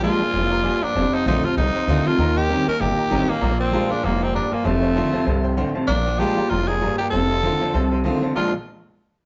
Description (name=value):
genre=rock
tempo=194 BPM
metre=4/4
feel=swing 58% on 8ths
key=Bb major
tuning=A4 = 440 Hz
part: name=raspy tenor saxophone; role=melody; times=0.0-8.5 s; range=A3 to Bb4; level=-25 LUFS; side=equal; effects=none
part: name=clear upright piano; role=accompaniment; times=0.0-8.5 s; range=C5 to Db6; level=-34 LUFS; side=equal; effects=none
part: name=picked steel-string acoustic guitar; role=accompaniment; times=0.0-8.5 s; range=F2 to G4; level=-29 LUFS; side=equal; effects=none
part: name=electric guitar through a small old amp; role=riff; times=0.0-8.5 s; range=F2 to D4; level=-26 LUFS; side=equal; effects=none
part: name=upright bass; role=bass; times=0.0-8.5 s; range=F1 to Eb2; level=-26 LUFS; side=equal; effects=none
room=moderate studio reverb, RT60 0.8 s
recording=band playing live in one room, nothing above 7.7 kHz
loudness=-21 LUFS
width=mono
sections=0.0-5.9 A section; 5.9-8.4 B section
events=none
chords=0.0 Bb7; 1.0 F7; 2.2 Eb7; 3.4 Bb7; 4.7 F7; 5.9 Bb7; 7.1 F7; 8.4 Bb7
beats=0.03 0.34 0.64 | 0.95 1.26 1.57 1.88 | 2.19 2.49 2.80 3.11 | 3.42 3.73 4.03 4.34 | 4.65 4.96 5.27 5.58 | 5.89 6.20 6.50 6.81 | 7.12 7.43 7.74 8.05 | 8.36